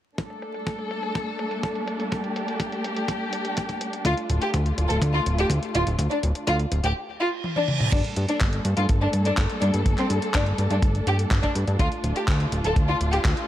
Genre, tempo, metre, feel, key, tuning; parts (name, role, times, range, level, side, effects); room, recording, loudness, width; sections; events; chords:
italo disco; 124 BPM; 4/4; straight; G minor; A4 = 440 Hz
dark studio string section; sustained chords; 0.2-13.5 s; G3 to A4; -29 LUFS; left 1 dB
clean 12-bit digital drum machine; drums; 0.2-13.5 s; crash cymbal, handclaps, hi-hat, toms; -30 LUFS; equal; low-pass filter on hats, low-pass filter on toms, low-pass filter on cymbals, low-pass filter on snare, gated reverb
kick drum; drums; 0.2-13.3 s; -24 LUFS; equal; high-pass filter on kick, high-pass filter on snare, high-pass filter on room
fat analog bass; bass; 4.0-13.3 s; D1 to G2; -24 LUFS; equal; tube saturation
warm chamber violin section; melody; 4.1-13.2 s; C4 to A4; -27 LUFS; left 1 dB; ping-pong delay
reverse cymbal; sound effects; 7.2-7.9 s; -31 LUFS; right 7 dB
light reverb, small room ambience; vinyl crackle; -22 LUFS; side -12 dB against mid
0.2-7.9 A section; 7.9-13.5 B section
filter sweep on drum 0.2-7.9; reverse cymbal 7.2-7.9; drum fill 7.4-7.9
0.2 Gmadd9; 4.1 Dm; 7.9 Gmadd9; 11.8 Dm